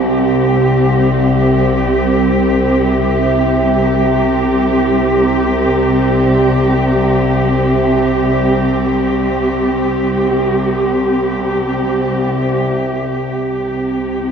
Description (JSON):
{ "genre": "dark ambient drone", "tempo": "free time", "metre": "none", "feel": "none", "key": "unclear", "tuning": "A4 = 440 Hz", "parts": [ { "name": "dark studio cello section", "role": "sustained chords", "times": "0.0-14.3 s", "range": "C3 to G4", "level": "-14 LUFS", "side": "right 1 dB", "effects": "shimmer reverb" }, { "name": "overtone-sweeping drone", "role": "drone", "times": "0.0-14.3 s", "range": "C2 to C3", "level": "-16 LUFS", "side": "equal", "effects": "chorus, built-in reverb" } ], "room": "wet lush hall reverb, RT60 2.7 s", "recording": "dreamy mix soaked in reverb, cassette tape", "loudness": "-12 LUFS", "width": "side -7 dB against mid", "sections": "0.0-13.1 A section; 13.1-14.3 B section", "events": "none", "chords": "0.0 C5", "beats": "free time" }